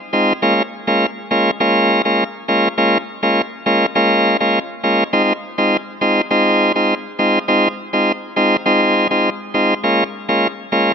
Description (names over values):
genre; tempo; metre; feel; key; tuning
dancehall; 102 BPM; 4/4; straight; Bb minor; A4 = 435 Hz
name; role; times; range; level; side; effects
bright tonewheel organ; solo; 0.1-10.9 s; Ab3 to F4; -14 LUFS; equal; overdrive, stopped rotary speaker
room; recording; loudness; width
light reverb; none; -14 LUFS; side -6 dB against mid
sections
0.0-9.8 A section; 9.8-10.9 B section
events
none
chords
0.4 Bbm7; 5.1 Fm7; 9.8 Bbm7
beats
| 0.43 1.01 1.60 2.19 | 2.78 3.37 3.96 4.54 | 5.13 5.72 6.31 6.90 | 7.49 8.07 8.66 9.25 | 9.84 10.43